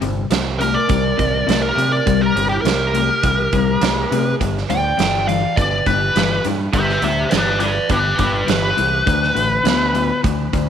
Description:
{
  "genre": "blues rock power trio and southern rock",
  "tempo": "103 BPM",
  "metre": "4/4",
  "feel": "straight",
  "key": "unclear",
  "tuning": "A4 = 442 Hz",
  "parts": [
    { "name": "crunchy overdriven guitar", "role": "riff", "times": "0.0-10.7 s", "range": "G2 to B3", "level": "-22 LUFS", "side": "left 11 dB", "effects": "none" },
    { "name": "growling fingered electric bass", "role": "bass", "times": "0.0-10.7 s", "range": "G1 to C3", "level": "-22 LUFS", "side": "right 1 dB", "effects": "overdrive" },
    { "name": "big rock drum kit", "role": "drums", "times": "0.0-10.7 s", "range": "hi-hat, kick drum, snare drum", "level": "-22 LUFS", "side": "right 5 dB", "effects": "none" },
    { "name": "fuzz lead guitar", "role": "melody", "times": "0.6-10.2 s", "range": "G4 to G5", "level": "-19 LUFS", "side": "equal", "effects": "wah, distortion" },
    { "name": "lead guitar through a small cranked amp", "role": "second line", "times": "0.6-9.0 s", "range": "E4 to D5", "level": "-27 LUFS", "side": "right 11 dB", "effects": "overdrive" }
  ],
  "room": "moderate spring reverb, RT60 1.6 s, small room ambience",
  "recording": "1960s-style stereo with parts hard left and right",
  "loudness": "-15 LUFS",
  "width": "side -8 dB against mid",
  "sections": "0.0-10.7 A section",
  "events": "none",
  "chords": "0.0 C5; 4.4 G; 9.1 D5"
}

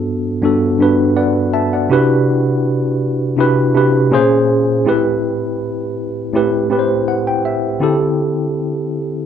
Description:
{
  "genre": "soul",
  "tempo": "81 BPM",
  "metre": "4/4",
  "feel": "swing 54% on 16ths",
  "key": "A dorian",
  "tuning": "A4 = 439 Hz",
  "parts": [
    { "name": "mellow tine electric piano", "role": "solo", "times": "0.0-9.3 s", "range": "G2 to A5", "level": "-13 LUFS", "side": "equal", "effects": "medium stereo tremolo" }
  ],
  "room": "moderate studio reverb, RT60 0.6 s",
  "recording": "band playing live in one room",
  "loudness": "-13 LUFS",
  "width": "side -8 dB against mid",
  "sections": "0.0-9.3 A section",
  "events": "tine electric piano fill 0.8-1.9, 6.7-7.8",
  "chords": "0.0 Gmaj9; 1.9 Cmaj9#11; 4.1 Bbm9; 4.9 Am9; 7.8 D9sus4"
}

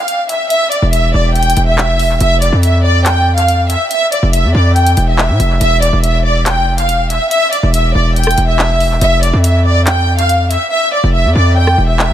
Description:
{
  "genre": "hip hop, drill",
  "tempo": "141 BPM",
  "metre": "4/4",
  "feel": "half-time",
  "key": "E phrygian",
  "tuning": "A4 = 440 Hz",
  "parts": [
    { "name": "warm studio violin section", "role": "melody", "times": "0.0-12.1 s", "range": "D5 to G5", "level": "-14 LUFS", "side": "equal", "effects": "dub echo" },
    { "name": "drill drum kit", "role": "drums", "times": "0.1-12.1 s", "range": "handclaps, hi-hat, rim click", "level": "-20 LUFS", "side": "equal", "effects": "dub echo" },
    { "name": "distorted 808-style bass", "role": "bass", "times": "0.8-12.1 s", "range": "E1 to A2", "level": "-12 LUFS", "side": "equal", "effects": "distortion" }
  ],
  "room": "digital ambience",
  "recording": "echo-heavy mix",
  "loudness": "-10 LUFS",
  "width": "side -11 dB against mid",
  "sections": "0.0-12.1 A section",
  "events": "hi-hats muted 10.7-12.1",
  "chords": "0.0 E5; 2.2 N.C.; 5.6 E7(no3)"
}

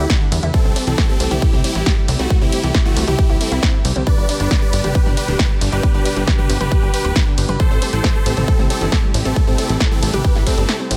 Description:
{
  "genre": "uplifting trance",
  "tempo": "136 BPM",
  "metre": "4/4",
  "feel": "straight",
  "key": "unclear",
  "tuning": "A4 = 435 Hz",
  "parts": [
    { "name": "supersaw chords", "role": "melody", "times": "0.0-10.8 s", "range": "A3 to D5", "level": "-26 LUFS", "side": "equal", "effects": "sidechain pumping, tape echo" },
    { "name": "filtered supersaw swell", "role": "sustained chords", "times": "0.0-11.0 s", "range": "C3 to F#5", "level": "-30 LUFS", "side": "equal", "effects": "sidechain pumping" },
    { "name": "analog pluck", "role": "arpeggios", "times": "0.0-11.0 s", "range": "D3 to B4", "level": "-28 LUFS", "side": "equal", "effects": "chorus, cassette tape, sidechain pumping, tape echo" },
    { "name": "plucky analog bass", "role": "bass", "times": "0.0-11.0 s", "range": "D1 to E2", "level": "-23 LUFS", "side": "equal", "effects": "sidechain pumping" },
    { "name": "electronic kick drum", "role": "drums", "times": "0.1-10.6 s", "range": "none", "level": "-18 LUFS", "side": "equal", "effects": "none" },
    { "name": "punchy analog drum machine", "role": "drums", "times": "0.1-11.0 s", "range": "hi-hat, ride cymbal, snare drum, toms", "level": "-25 LUFS", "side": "equal", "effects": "sidechain pumping on hats, sidechain pumping on toms, sidechain pumping on cymbals" }
  ],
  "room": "digital ambience",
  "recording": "none",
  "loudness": "-17 LUFS",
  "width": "mono",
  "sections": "0.0-11.0 A section",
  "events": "break 10.7",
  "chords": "0.0 Em7; 0.5 C6; 4.1 G; 7.6 Am7"
}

